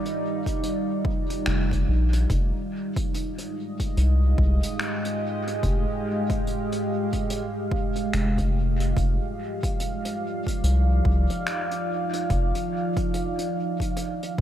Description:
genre	ambient dub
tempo	72 BPM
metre	4/4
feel	swing 60% on 16ths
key	F dorian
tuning	A4 = 440 Hz
part	deep dark ambient pad	sustained chords	0.0-14.4 s	F3 to F5	-27 LUFS	right 1 dB	chorus, built-in reverb
part	jazz brush drum kit	drums	0.1-14.4 s	finger snaps, hi-hat	-34 LUFS	equal	dub echo
part	electronic kick drum	drums	0.5-14.4 s	none	-28 LUFS	equal	none
part	soft dub sub bass	bass	1.5-14.4 s	F1 to C2	-21 LUFS	equal	none
room	light reverb, studio reverb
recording	none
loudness	-23 LUFS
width	side -11 dB against mid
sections	0.0-14.4 A section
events	none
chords	0.0 Ebmaj9; 2.3 Fm9; 9.0 Ebmaj9/F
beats	0.63 1.47 | 2.30 3.13 3.97 4.80 | 5.63 6.47 7.30 8.13 | 8.97 9.80 10.63 11.47 | 12.30 13.13 13.97

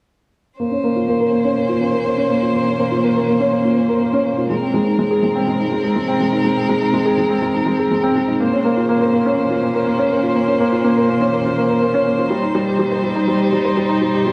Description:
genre	piano and strings electronica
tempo	123 BPM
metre	4/4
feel	straight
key	Bb dorian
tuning	A4 = 441 Hz
part	warm string quartet	sustained chords	0.6-14.3 s	G3 to C5	-24 LUFS	equal	none
part	felt-muted upright piano	riff	0.6-14.3 s	G3 to C5	-18 LUFS	equal	low-pass filter, tape echo
room	moderate huge ambient reverb, RT60 8.2 s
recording	none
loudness	-17 LUFS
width	mono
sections	0.6-14.3 A section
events	filter sweep on felt piano 0.6-14.3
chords	0.6 Bbmadd9; 4.5 Abadd9; 8.4 Bbmadd9; 12.3 Cm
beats	| 0.60 1.08 1.57 2.06 | 2.55 3.04 3.52 4.01 | 4.50 4.99 5.47 5.96 | 6.45 6.94 7.42 7.91 | 8.40 8.89 9.38 9.86 | 10.35 10.84 11.33 11.82 | 12.30 12.79 13.28 13.77 | 14.26

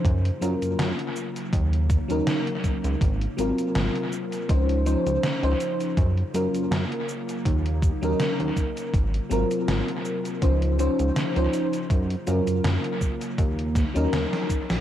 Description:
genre	vaporwave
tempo	81 BPM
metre	4/4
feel	swing 54% on 16ths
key	Eb dorian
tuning	A4 = 440 Hz
part	FM electric piano with soft pad layer	accompaniment	0.0-14.8 s	F3 to C5	-26 LUFS	left 1 dB	tremolo, analog chorus, dub echo
part	warbly tape-like pad	sustained chords	0.0-14.8 s	C3 to C5	-34 LUFS	left 1 dB	chorus, built-in reverb
part	chorused synth bass	bass	0.0-14.8 s	Ab1 to Gb2	-24 LUFS	equal	none
part	electronic kick drum	drums	0.0-14.7 s	none	-23 LUFS	equal	overdrive
part	gated 80s digital drum machine	drums	0.1-14.8 s	cabasa, hi-hat, snare drum	-31 LUFS	equal	gated reverb, gated reverb snare, overdrive, dub echo
room	light reverb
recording	echo-heavy mix, cassette tape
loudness	-22 LUFS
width	side -11 dB against mid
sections	0.0-14.8 A section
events	drum fill 14.3-14.8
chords	0.1 Gbmaj7; 1.2 Ebm7; 3.0 Ab13; 4.5 Dbmaj9; 6.0 Gbmaj7; 7.1 Ebm7; 8.9 Ab13; 10.4 Dbmaj9; 11.9 Gbmaj7; 13.0 Ebm7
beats	| 0.05 0.79 1.53 2.27 | 3.01 3.75 4.49 5.24 | 5.98 6.72 7.46 8.20 | 8.94 9.68 10.42 11.16 | 11.90 12.64 13.38 14.12

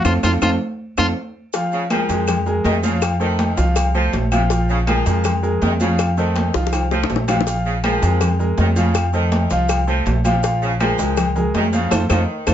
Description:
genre	latin, salsa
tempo	162 BPM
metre	4/4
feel	straight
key	Bb minor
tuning	A4 = 441 Hz
part	clear trumpet	melody	0.0-1.1 s	F4	-21 LUFS	left 1 dB	none
part	clear baby grand piano	accompaniment	0.0-12.5 s	F3 to F5	-22 LUFS	equal	none
part	upright bass	bass	0.0-12.5 s	Bb1 to F2	-20 LUFS	equal	none
part	claves	percussion	0.0-12.5 s	none	-30 LUFS	left 6 dB	none
part	timbales and agogo bells	percussion	0.0-12.5 s	none	-26 LUFS	left 2 dB	none
part	bongos and cowbell	percussion	0.1-12.5 s	none	-26 LUFS	left 8 dB	none
part	congas	percussion	0.1-12.5 s	none	-25 LUFS	equal	none
part	maracas	percussion	0.1-12.5 s	none	-35 LUFS	right 6 dB	none
part	clear saxophone section	second line	1.7-12.5 s	C3 to F3	-25 LUFS	right 1 dB	slapback echo
room	moderate studio ambience, RT60 0.5 s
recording	nothing above 7.5 kHz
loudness	-16 LUFS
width	side -10 dB against mid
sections	0.0-1.5 A section; 1.5-12.5 B section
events	drum fill 0.0-1.5, 6.5-7.5, 12.3; band accent 0.0-1.5, 11.9-12.5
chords	0.0 F; 1.5 Bb7(no3); 3.0 F7; 4.5 Bb7(no3); 6.0 F7; 7.5 Bb7(no3); 9.0 F7; 10.4 Bbm7; 11.9 F7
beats	| 0.05 0.42 0.79 1.16 | 1.53 1.90 2.28 2.65 | 3.02 3.39 3.76 4.13 | 4.50 4.87 5.24 5.62 | 5.99 6.36 6.73 7.10 | 7.47 7.84 8.21 8.58 | 8.95 9.32 9.69 10.06 | 10.43 10.80 11.18 11.54 | 11.92 12.29

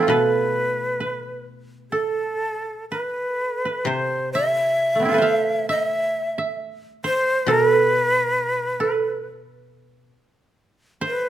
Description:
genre	japanese traditional, Japanese chamber music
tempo	67 BPM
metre	4/4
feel	rubato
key	A hirajoshi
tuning	A4 = 440 Hz
part	breathy bright shakuhachi	melody	0.0-11.3 s	A4 to E5	-22 LUFS	left 1 dB	none
part	koto	second line	0.0-11.3 s	A3 to F5	-22 LUFS	right 4 dB	none
part	koto	accompaniment	0.0-10.1 s	B2 to E3	-30 LUFS	left 5 dB	none
room	light reverb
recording	close, detailed microphones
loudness	-19 LUFS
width	side -12 dB against mid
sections	0.0-3.9 A section; 3.9-11.3 B section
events	none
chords	none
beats	| 0.10 0.99 1.91 2.89 | 3.86 4.79 5.70 6.60 | 7.49 8.38 9.26 10.14 | 11.03

